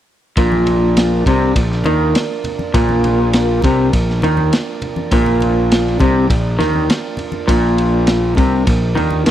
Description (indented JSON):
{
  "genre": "psychedelic rock",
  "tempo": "101 BPM",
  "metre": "4/4",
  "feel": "straight",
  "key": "Bb major",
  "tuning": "A4 = 440 Hz",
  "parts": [
    { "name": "pedal harmonium", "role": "sustained chords", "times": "0.4-9.3 s", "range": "F3 to Bb4", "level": "-25 LUFS", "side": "right 7 dB", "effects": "stereo widening" },
    { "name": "electric guitar through a small old amp", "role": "riff", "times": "0.4-9.3 s", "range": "Bb2 to Eb3", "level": "-16 LUFS", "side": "left 1 dB", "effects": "harmonic tremolo" },
    { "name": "fuzz picked electric bass", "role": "bass", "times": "0.4-9.3 s", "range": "Bb1 to Eb2", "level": "-18 LUFS", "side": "equal", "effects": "overdrive" },
    { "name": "crunchy breakbeat drum kit", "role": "drums", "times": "0.4-9.3 s", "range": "kick drum, ride cymbal, snare drum", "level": "-19 LUFS", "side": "equal", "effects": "none" },
    { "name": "congas", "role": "percussion", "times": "0.5-9.2 s", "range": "none", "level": "-27 LUFS", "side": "left 2 dB", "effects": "none" }
  ],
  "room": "little or no reverb",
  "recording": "dry, close 1970s-style studio recording",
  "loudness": "-13 LUFS",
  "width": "side -11 dB against mid",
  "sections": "0.4-9.3 A section",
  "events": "none",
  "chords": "0.4 Bb"
}